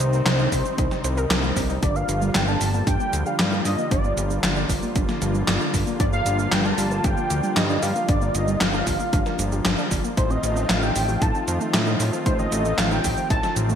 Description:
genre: synthwave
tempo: 115 BPM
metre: 4/4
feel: straight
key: G minor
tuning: A4 = 440 Hz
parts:
  - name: wide unison lead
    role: melody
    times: 0.0-13.5 s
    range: C5 to A5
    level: -27 LUFS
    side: equal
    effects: ping-pong delay
  - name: brassy analog pad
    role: sustained chords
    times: 0.0-13.8 s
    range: C3 to F4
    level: -28 LUFS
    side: left 1 dB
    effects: chorus, sidechain pumping
  - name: fat analog bass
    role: bass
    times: 0.0-13.8 s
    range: G1 to A2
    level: -24 LUFS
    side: equal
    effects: none
  - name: gated 80s digital drum machine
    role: drums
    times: 0.0-13.8 s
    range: cabasa, handclaps, hi-hat, snare drum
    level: -25 LUFS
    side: equal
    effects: gated reverb, gated reverb snare, overdrive
  - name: warbly dusty pluck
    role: arpeggios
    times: 0.1-13.8 s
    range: F3 to C5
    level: -30 LUFS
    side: right 2 dB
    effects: chorus, ping-pong delay
  - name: electronic kick drum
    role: drums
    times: 0.5-13.4 s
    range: none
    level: -24 LUFS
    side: equal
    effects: overdrive
room: moderate lush hall reverb, RT60 2.4 s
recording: bright 1980s-style digital production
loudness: -20 LUFS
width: side -8 dB against mid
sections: 0.0-13.8 A section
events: none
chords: 0.0 Cm7; 1.8 Gm7; 10.2 F7/A

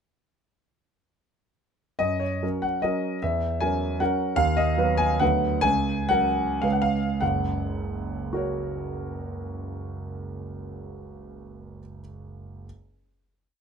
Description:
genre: classical, romantic triple-time dance for piano with dotted rhythms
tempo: 96-159 BPM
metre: 3/4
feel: rubato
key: F# major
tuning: A4 = 443 Hz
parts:
  - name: warm concert grand piano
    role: solo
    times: 2.0-12.7 s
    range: F#1 to G#5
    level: -24 LUFS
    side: equal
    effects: none
room: light reverb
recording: close, detailed microphones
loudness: -23 LUFS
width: side -6 dB against mid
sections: 2.0-7.2 A section; 7.2-10.5 final chord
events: slowing down 3.8-7.2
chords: 2.0 F#; 3.2 F#7/E; 4.4 B/D#; 5.2 Bm/D; 5.6 F#/C#; 6.6 C#7; 7.2 F#

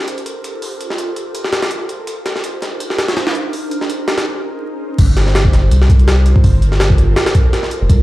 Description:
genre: drum and bass, jungle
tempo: 165 BPM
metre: 4/4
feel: swing 55% on 16ths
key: G minor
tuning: A4 = 440 Hz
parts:
  - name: ethereal airy pad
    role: sustained chords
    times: 0.0-8.0 s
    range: Eb4 to C5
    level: -23 LUFS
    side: right 2 dB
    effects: ensemble chorus, built-in reverb, phaser, vintage 12-bit sampler grit
  - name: jungle sampler-style drum kit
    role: drums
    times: 0.1-8.0 s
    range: crash cymbal, hi-hat, kick drum, snare drum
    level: -15 LUFS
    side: equal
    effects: high-pass filter on hats, high-pass filter on snare, high-pass filter on cymbals, high-pass filter on kick, high-pass filter on room
  - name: soft dub sub bass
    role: bass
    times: 5.0-8.0 s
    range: F1 to C2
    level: -12 LUFS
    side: equal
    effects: none
room: light reverb, digital ambience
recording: played on a big sound system in a bare room, large studio reverb, vinyl crackle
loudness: -12 LUFS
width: side -16 dB against mid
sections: 0.0-5.0 A section; 5.0-8.0 B section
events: break 4.3-5.0; drop 5.0-8.0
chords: 0.0 Gm11; 2.1 Cm11; 3.5 Bbm11; 5.0 Gm11

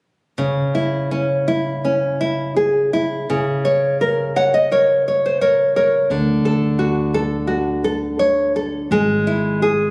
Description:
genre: fado-style ballad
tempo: 84 BPM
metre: 4/4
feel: rubato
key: unclear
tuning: A4 = 440 Hz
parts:
  - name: nylon-string guitar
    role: accompaniment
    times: 0.4-9.9 s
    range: C#3 to F#5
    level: -19 LUFS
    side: equal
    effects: none
  - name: upright bass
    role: bass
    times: 6.1-9.9 s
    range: G#1 to D2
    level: -24 LUFS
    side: equal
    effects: none
room: moderate recital hall reverb, RT60 1.6 s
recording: recorded on a phone in the room, club reverb, compression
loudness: -18 LUFS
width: mono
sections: 0.4-9.9 A section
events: nylon-string guitar fill 4.0-6.1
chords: 0.4 C#m; 3.3 F#/C# (rootless); 6.1 Dmaj7; 8.9 E/G#

